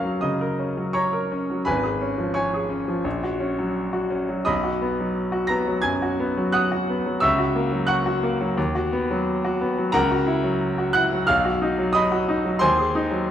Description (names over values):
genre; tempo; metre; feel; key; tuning
classical, romantic character piece for solo piano; 88 BPM; 4/4; uneven beats, rubato; F# major; A4 = 440 Hz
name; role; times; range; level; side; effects
bright grand piano; solo; 0.0-13.3 s; G#1 to A#6; -20 LUFS; equal; none
room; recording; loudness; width
wet scoring stage reverb, RT60 1.6 s; dark, warm production; -20 LUFS; side -10 dB against mid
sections
0.0-13.3 A section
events
none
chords
0.0 F#; 1.7 C#7/G#; 3.1 F#/A#; 4.5 B; 7.2 F#7/C#; 8.6 B/D#; 9.9 F#7/C#; 11.3 B; 12.6 G#7/D#